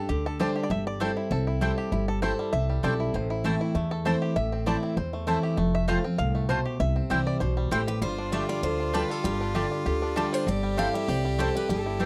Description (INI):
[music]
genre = bluegrass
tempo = 197 BPM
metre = 4/4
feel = swing 54% on 8ths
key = C major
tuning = A4 = 441 Hz
[part]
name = bluegrass banjo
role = melody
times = 0.0-12.1 s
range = E3 to F5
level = -36 LUFS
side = equal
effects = none
[part]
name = picked steel-string acoustic guitar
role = accompaniment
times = 0.0-12.1 s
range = E2 to A4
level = -31 LUFS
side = equal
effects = none
[part]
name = upright bass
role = bass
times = 0.1-12.1 s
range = F1 to E2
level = -32 LUFS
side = equal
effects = none
[part]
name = mandolin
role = stabs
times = 0.4-12.1 s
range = A3 to A5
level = -32 LUFS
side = equal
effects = none
[part]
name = picked steel-string acoustic guitar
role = melody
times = 7.7-12.1 s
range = G4 to F5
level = -35 LUFS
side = equal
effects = none
[part]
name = clear fiddle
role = second line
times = 8.0-12.1 s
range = F4 to G4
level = -35 LUFS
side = equal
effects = none
[sound]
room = light reverb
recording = dry, close 1970s-style studio recording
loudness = -27 LUFS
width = mono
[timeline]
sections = 0.0-8.0 A section; 8.0-12.1 B section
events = five-string banjo solo 0.0-8.0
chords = 0.0 Gsus2; 0.7 C6/G; 3.1 Am; 5.6 F; 6.8 C; 8.0 Gsus2; 10.5 C6/G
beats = 0.09 0.40 | 0.70 1.01 1.31 1.62 | 1.92 2.23 2.53 2.83 | 3.14 3.44 3.75 4.05 | 4.36 4.66 4.97 5.27 | 5.58 5.88 6.19 6.49 | 6.80 7.10 7.41 7.71 | 8.02 8.33 8.63 8.94 | 9.24 9.55 9.86 10.16 | 10.47 10.77 11.08 11.39 | 11.69 12.00